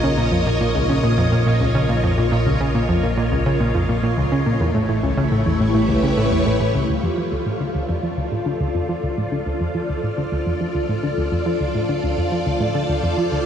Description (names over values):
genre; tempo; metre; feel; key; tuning
ambient, sequencer-driven space music; 105 BPM; 4/4; straight; Bb phrygian, D minor from 6.9 s; A4 = 440 Hz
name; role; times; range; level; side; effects
string machine, full ensemble; sustained chords; 0.0-13.5 s; A3 to Eb5; -22 LUFS; equal; phaser, ensemble chorus
analog pluck; riff; 0.0-13.4 s; Db2 to F3; -20 LUFS; equal; chorus, cassette tape, ping-pong delay
fat analog bass; bass; 0.0-6.9 s; A1 to Bb1; -24 LUFS; equal; none
bubbling stepped-filter texture; texture; 0.0-13.5 s; C5 to Db5; -33 LUFS; equal; chorus, built-in reverb
room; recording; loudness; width
moderate huge ambient reverb, RT60 7.9 s; none; -18 LUFS; side -8 dB against mid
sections
0.0-6.9 A section; 6.9-13.5 B section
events
none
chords
0.0 Bbm; 4.6 A7; 6.9 Dm